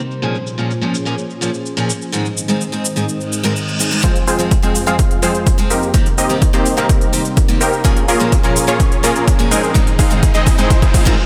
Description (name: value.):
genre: EDM, festival progressive house.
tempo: 126 BPM.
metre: 4/4.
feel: straight.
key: F minor.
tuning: A4 = 441 Hz.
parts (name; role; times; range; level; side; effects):
lush unison pad; sustained chords; 0.0-11.2 s; F2 to Eb5; -26 LUFS; equal; chorus, sidechain pumping.
electronic shaker and hi-hat; drums; 0.1-11.2 s; none; -26 LUFS; equal; overdrive.
picked steel-string acoustic guitar; accompaniment; 0.2-11.1 s; Ab2 to Bb4; -23 LUFS; equal; sidechain pumping, tape echo.
reverse cymbal and riser; sound effects; 3.3-11.3 s; none; -28 LUFS; equal; none.
supersaw stab; riff; 4.0-11.2 s; Ab3 to F5; -20 LUFS; equal; sidechain pumping, low-pass filter, tape echo.
electronic kick drum; drums; 4.0-11.2 s; none; -16 LUFS; equal; overdrive.
room: light reverb, digital ambience.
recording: low-pass filter.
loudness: -15 LUFS.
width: mono.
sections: 0.0-4.0 A section; 4.0-11.3 B section.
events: filter sweep 0.0-4.0; reverse cymbal 3.3-4.0, 10.7-11.3; build-up 4.0-11.3; filter sweep on supersaw synth 4.0-11.3; drum fill 7.8-11.2.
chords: 0.2 Bbm7; 2.1 Ab; 4.0 Fm; 5.9 Cm7; 7.8 Bbm7; 9.8 Ab.